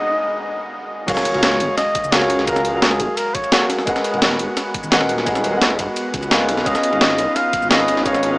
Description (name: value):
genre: liquid drum and bass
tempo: 172 BPM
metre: 4/4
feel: straight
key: unclear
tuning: A4 = 440 Hz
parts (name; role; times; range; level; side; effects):
- mellow flugelhorn; melody; 0.0-3.7, 6.7-8.4 s; G#4 to E#5; -21 LUFS; equal; digital delay
- felt-muted upright piano; accompaniment; 0.0-8.4 s; F#3 to F#5; -21 LUFS; equal; none
- airy breathy pad; sustained chords; 1.1-8.4 s; G#3 to F#4; -29 LUFS; equal; chorus, sidechain pumping
- swelling detuned saw bass; bass; 1.1-8.4 s; D#1 to C#2; -25 LUFS; equal; none
- breakbeat sampler-style drum kit; drums; 1.1-8.3 s; crash cymbal, hi-hat, shaker, snare drum; -19 LUFS; equal; none
- breakbeat sampler-style drum kit; drums; 1.1-8.3 s; ride cymbal, snare drum; -24 LUFS; equal; high-pass filter on cymbals, high-pass filter on snare
- electronic kick drum; drums; 1.1-8.1 s; none; -30 LUFS; equal; none
- impact; sound effects; 1.1-2.5 s; none; -34 LUFS; equal; none
room: moderate huge ambient reverb, RT60 7.5 s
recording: small speaker sound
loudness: -15 LUFS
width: side -25 dB against mid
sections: 0.0-1.1 A section; 1.1-8.4 B section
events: break 0.0-1.1; build-up 0.0-1.1; drop 1.1-8.4; impact 1.1-2.5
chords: 0.0 G#m9; 1.1 F#maj9; 3.9 G#m9; 6.7 C#9